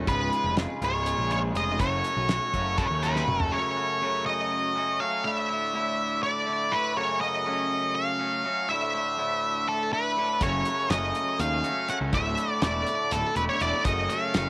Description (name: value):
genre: psychedelic rock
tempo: 244 BPM (eighths)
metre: 7/8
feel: straight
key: unclear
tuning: A4 = 435 Hz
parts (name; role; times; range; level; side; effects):
- pedal harmonium; sustained chords; 0.0-14.5 s; A3 to Gb5; -41 LUFS; equal; none
- twangy electric guitar; riff; 0.0-14.5 s; Db2 to Gb4; -34 LUFS; equal; phaser
- fuzz picked electric bass; bass; 0.0-3.5, 10.4-14.5 s; Db1 to Eb2; -33 LUFS; equal; overdrive
- octave-fuzz lead guitar; melody; 0.1-14.5 s; A4 to Gb5; -29 LUFS; equal; distortion, tape echo
- damped 70s drum kit; drums; 0.1-3.5, 10.4-14.5 s; hi-hat, kick drum, snare drum, toms; -32 LUFS; equal; none
room: little or no reverb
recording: none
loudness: -27 LUFS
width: mono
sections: 0.0-3.5 A section; 3.5-14.5 B section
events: drum fill 3.1-3.5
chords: 0.1 Db; 1.8 Gbm; 5.2 Dsus2; 7.0 Gbm; 8.7 Dsus2; 10.4 Gbm; 12.1 Dsus2; 13.9 Gbm